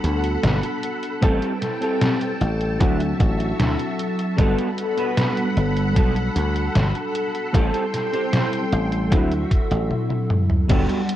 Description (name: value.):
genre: vaporwave.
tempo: 76 BPM.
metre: 4/4.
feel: straight.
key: G major.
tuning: A4 = 440 Hz.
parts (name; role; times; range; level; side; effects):
FM electric piano with soft pad layer; accompaniment; 0.0-11.2 s; F#3 to F#5; -25 LUFS; equal; lush chorus, analog delay.
soft string machine; sustained chords; 0.0-9.9 s; F#4 to C6; -29 LUFS; equal; ensemble chorus.
mellow electric guitar; riff; 0.0-11.0 s; B3 to C5; -28 LUFS; right 1 dB; ensemble chorus, vintage 12-bit sampler grit, analog delay.
dry thumbed slap bass; bass; 0.0-10.9 s; G1 to D2; -22 LUFS; equal; none.
detuned 8-bit digital drum machine; drums; 0.0-11.2 s; crash cymbal, hi-hat, snare drum, toms; -24 LUFS; equal; none.
electronic kick drum; drums; 1.2-10.9 s; none; -19 LUFS; equal; none.
room: light reverb.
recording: cassette tape.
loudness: -19 LUFS.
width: side -12 dB against mid.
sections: 0.0-10.7 A section.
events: drum fill 9.9-10.7.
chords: 0.0 Gmaj9; 1.2 Am7; 2.8 D9; 4.4 Gmaj9; 7.5 Am7; 9.1 D9.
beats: 0.43 | 1.22 2.01 2.80 3.59 | 4.38 5.17 5.96 6.75 | 7.54 8.33 9.12 9.91 | 10.70.